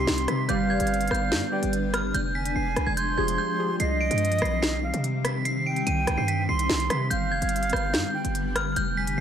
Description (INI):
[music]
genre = hip hop, drill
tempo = 145 BPM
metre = 4/4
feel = half-time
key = C harmonic minor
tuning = A4 = 440 Hz
[part]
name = metallic FM bell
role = melody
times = 0.0-9.2 s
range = F6 to Eb7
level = -30 LUFS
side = equal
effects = chorus, low-pass filter, ping-pong delay
[part]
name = silver concert flute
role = second line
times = 0.0-9.2 s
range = Eb5 to C6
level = -30 LUFS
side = right 5 dB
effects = ping-pong delay
[part]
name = glassy digital keys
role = accompaniment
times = 0.0-3.8 s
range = C3 to D5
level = -28 LUFS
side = equal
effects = chorus, low-pass filter
[part]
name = granular cloud pad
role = sustained chords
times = 0.0-9.2 s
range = D3 to D4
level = -31 LUFS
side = left 2 dB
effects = built-in reverb
[part]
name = hard-hitting 808-style bass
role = bass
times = 0.0-9.2 s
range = F1 to C3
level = -28 LUFS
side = equal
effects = none
[part]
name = drill drum kit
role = drums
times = 0.1-9.2 s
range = hi-hat, rim click, snare drum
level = -29 LUFS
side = equal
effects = none
[sound]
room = digital ambience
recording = none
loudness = -23 LUFS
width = side -8 dB against mid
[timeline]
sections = 0.0-3.8 A section; 3.8-9.2 A section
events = drums muted 3.4-3.8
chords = 0.5 G; 2.1 Fmadd9; 3.8 Cm; 7.1 G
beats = 0.07 | 0.49 0.90 1.32 1.73 | 2.14 2.56 2.97 3.38 | 3.80 4.21 4.63 5.04 | 5.45 5.87 6.28 6.70 | 7.11 7.52 7.94 8.35 | 8.76 9.18